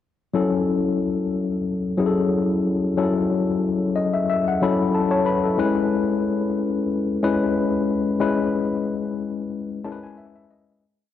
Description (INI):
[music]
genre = soul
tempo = 92 BPM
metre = 4/4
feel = swing 54% on 16ths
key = F# minor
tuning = A4 = 440 Hz
[part]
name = tine electric piano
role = solo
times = 0.3-10.9 s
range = F#3 to B5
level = -20 LUFS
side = left 3 dB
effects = overdrive, fast stereo tremolo, cassette tape
[sound]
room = moderate lush hall reverb, RT60 2.5 s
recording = home recording on cassette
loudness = -20 LUFS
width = side -10 dB against mid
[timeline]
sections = 0.3-10.8 A section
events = tine electric piano fill 3.6-5.6, 9.5-10.8; fade-out 8.2-10.8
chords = 0.3 F#m7; 5.6 E6